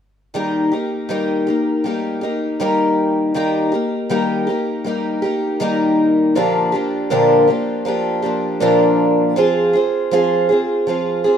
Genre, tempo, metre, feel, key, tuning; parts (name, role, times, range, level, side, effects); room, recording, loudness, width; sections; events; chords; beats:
pop; 80 BPM; 4/4; straight; Eb major; A4 = 440 Hz
picked twelve-string acoustic guitar; accompaniment; 0.3-11.4 s; Bb2 to Ab4; -15 LUFS; equal
moderate studio reverb, RT60 0.6 s; minimal, uncompressed stereo recording, faint mains hum; -15 LUFS; side -8 dB against mid
0.3-11.4 A section
0.3 Eb; 6.4 Bb6; 9.4 Fm
| 0.35 1.10 1.85 2.60 | 3.36 4.11 4.86 5.61 | 6.37 7.12 7.87 8.62 | 9.38 10.13 10.88